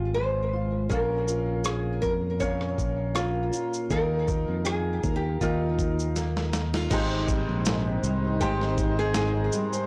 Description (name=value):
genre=acoustic pop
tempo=80 BPM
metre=4/4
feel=swing 55% on 16ths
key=Ab major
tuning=A4 = 443 Hz
part: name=nylon-string guitar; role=melody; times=0.0-9.7 s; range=Eb4 to Db5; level=-32 LUFS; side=equal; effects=plate reverb, digital delay
part: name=fingerpicked steel-string acoustic guitar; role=accompaniment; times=0.0-9.9 s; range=Ab2 to C5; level=-35 LUFS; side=equal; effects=double-tracked
part: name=fingered electric bass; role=bass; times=0.0-9.5 s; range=Ab1 to F2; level=-31 LUFS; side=equal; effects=none
part: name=bright upright piano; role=accompaniment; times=0.9-9.9 s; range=Ab3 to G5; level=-36 LUFS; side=equal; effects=plate reverb
part: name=dusty soul sampler-style drum kit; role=drums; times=0.9-9.9 s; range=crash cymbal, kick drum, rim click, shaker, snare drum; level=-32 LUFS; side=equal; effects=soft clipping on snare
part: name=warm French horn section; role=sustained chords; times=6.9-9.9 s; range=Eb3 to Eb4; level=-38 LUFS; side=equal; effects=plate reverb
room=moderate studio reverb, RT60 0.6 s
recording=blown-out, overdriven recording, overdrive, lossy compression artefacts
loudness=-27 LUFS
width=mono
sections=0.0-6.9 A section; 6.9-9.9 B section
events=drum fill 6.2-6.9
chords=0.0 Ab6; 0.9 Bbm; 3.9 Ebsus2; 6.9 Abmaj7